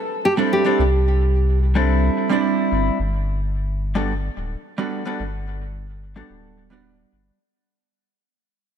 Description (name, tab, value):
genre	sunset chillout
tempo	109 BPM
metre	4/4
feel	straight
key	G major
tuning	A4 = 442 Hz
part	nylon-string guitar	melody	0.0-1.6 s	G4 to A4	-22 LUFS	right 2 dB	digital delay
part	vintage hollow-body jazz guitar	accompaniment	0.4-7.4 s	G3 to D5	-22 LUFS	moving between left 4 dB and right 4 dB	auto-pan, ping-pong delay
part	warm sub bass	bass	0.8-7.3 s	D1 to C2	-20 LUFS	left 1 dB	none
room	light reverb, small room ambience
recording	none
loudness	-18 LUFS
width	side -8 dB against mid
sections	0.0-3.0 A section; 3.0-7.4 B section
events	fade-out 3.0-7.4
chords	0.0 C69; 3.0 Gmaj9